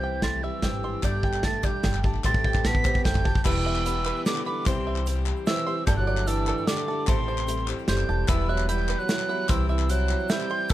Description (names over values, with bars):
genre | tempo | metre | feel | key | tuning
indie folk with a building arrangement | 149 BPM | 3/4 | straight | unclear | A4 = 441 Hz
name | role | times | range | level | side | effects
mellow hollow wooden whistle | melody | 0.0-10.7 s | C6 to B6 | -30 LUFS | right 1 dB | none
fingerpicked steel-string acoustic guitar | accompaniment | 0.0-2.2 s | G2 to E4 | -38 LUFS | left 4 dB | none
picked twelve-string acoustic guitar | accompaniment | 0.0-10.7 s | E2 to G4 | -35 LUFS | left 6 dB | none
bluegrass banjo | arpeggios | 0.0-10.7 s | A4 to C6 | -35 LUFS | right 4 dB | tape echo
upright bass | bass | 0.0-10.7 s | E1 to C2 | -28 LUFS | equal | none
warm French horn | second line | 0.2-10.7 s | C3 to B3 | -32 LUFS | right 5 dB | none
natural country drum kit | drums | 0.2-10.7 s | crash cymbal, hi-hat, kick drum, snare drum | -26 LUFS | equal | none
group handclap | percussion | 1.0-10.7 s | none | -38 LUFS | left 8 dB | none
tube shaker | percussion | 1.0-10.7 s | none | -49 LUFS | right 6 dB | none
warm brass ensemble | sustained chords | 3.4-10.7 s | D3 to D5 | -39 LUFS | right 1 dB | none
felt-muted upright piano | accompaniment | 3.5-10.7 s | G1 to F#5 | -38 LUFS | left 6 dB | none
room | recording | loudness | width
little or no reverb | dark, warm production | -22 LUFS | side -14 dB against mid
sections
0.0-3.5 A section; 3.5-10.7 B section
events
build-up 0.0-3.5; drum fill 0.0-3.5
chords
0.0 C; 1.0 Gsus2; 2.2 Am7; 3.5 Em; 4.7 C; 5.9 Gsus2; 7.1 Am7; 8.3 Em; 9.5 C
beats
0.23 0.63 | 1.04 1.44 1.85 | 2.25 2.65 3.06 | 3.46 3.86 4.26 | 4.66 5.07 5.47 | 5.87 6.27 6.67 | 7.08 7.48 7.88 | 8.28 8.69 9.09 | 9.49 9.89 10.30 | 10.70